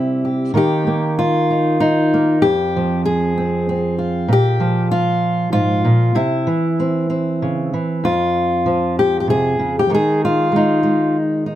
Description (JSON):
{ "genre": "folk, solo fingerstyle acoustic guitar", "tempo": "96 BPM", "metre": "3/4", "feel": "straight", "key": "F minor", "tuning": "A4 = 440 Hz", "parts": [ { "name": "fingerpicked steel-string acoustic guitar", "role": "solo", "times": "0.0-11.6 s", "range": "F2 to Ab4", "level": "-15 LUFS", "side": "equal", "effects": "none" } ], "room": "light reverb", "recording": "close, detailed microphones", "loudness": "-15 LUFS", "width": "side -12 dB against mid", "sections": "0.0-8.0 A section; 8.0-11.6 B section", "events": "none", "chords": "0.0 C; 0.5 Eb; 2.4 Fm; 4.3 Bb5; 6.2 C; 8.0 F5; 9.9 Ab5/Eb" }